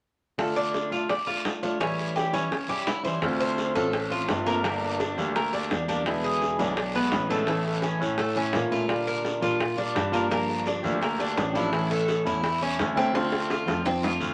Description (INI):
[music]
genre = latin, Cuban son and guajira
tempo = 169 BPM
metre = 4/4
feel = straight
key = D harmonic minor, D minor from 3.2 s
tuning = A4 = 440 Hz
[part]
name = fingerpicked plugged-in swing-style acoustic guitar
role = accompaniment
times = 0.4-14.3 s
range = A2 to G4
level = -32 LUFS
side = equal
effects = none
[part]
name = Cuban tres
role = arpeggios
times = 0.4-14.3 s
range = A3 to D5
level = -31 LUFS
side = equal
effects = none
[part]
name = bongos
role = percussion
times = 0.4-14.1 s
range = none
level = -35 LUFS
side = equal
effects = none
[part]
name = guiro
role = percussion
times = 0.4-14.3 s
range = none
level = -40 LUFS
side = equal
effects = none
[part]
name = clear concert grand piano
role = bass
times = 3.2-14.3 s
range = G1 to Bb2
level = -33 LUFS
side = equal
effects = none
[sound]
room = wet club reverb, RT60 0.6 s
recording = none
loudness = -26 LUFS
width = mono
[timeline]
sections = 0.4-3.2 A section; 3.2-14.3 B section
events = drum fill 13.2-14.3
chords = 0.4 Dm; 1.8 A7; 3.2 Dm7; 4.6 Gm; 6.1 E7; 7.5 A; 8.9 Bb6; 10.3 Gm7; 11.7 A; 13.2 Dm7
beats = | 0.39 0.74 1.10 1.45 | 1.81 2.16 2.52 2.87 | 3.23 3.58 3.94 4.29 | 4.64 5.00 5.35 5.71 | 6.06 6.42 6.77 7.12 | 7.48 7.83 8.19 8.54 | 8.90 9.25 9.61 9.96 | 10.31 10.67 11.02 11.38 | 11.73 12.09 12.44 12.79 | 13.15 13.50 13.86 14.21